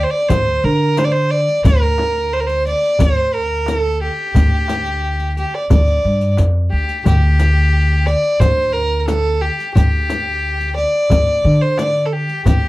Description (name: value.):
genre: Arabic maqam ensemble.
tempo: 89 BPM.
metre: 4/4.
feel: straight.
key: unclear.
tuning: A4 = 442 Hz.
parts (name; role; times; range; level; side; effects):
warm violin; melody; 0.0-12.7 s; G4 to D5; -17 LUFS; equal; slapback echo.
upright bass; bass; 0.0-12.7 s; D2 to D3; -16 LUFS; equal; none.
darbuka; percussion; 0.3-12.6 s; none; -21 LUFS; equal; none.
frame drum; percussion; 0.3-12.6 s; none; -21 LUFS; left 2 dB; none.
riq; percussion; 0.3-12.6 s; none; -28 LUFS; left 7 dB; none.
room: little or no reverb.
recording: dry, close 1970s-style studio recording.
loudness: -13 LUFS.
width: side -18 dB against mid.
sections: 0.0-12.7 A section.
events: none.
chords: none.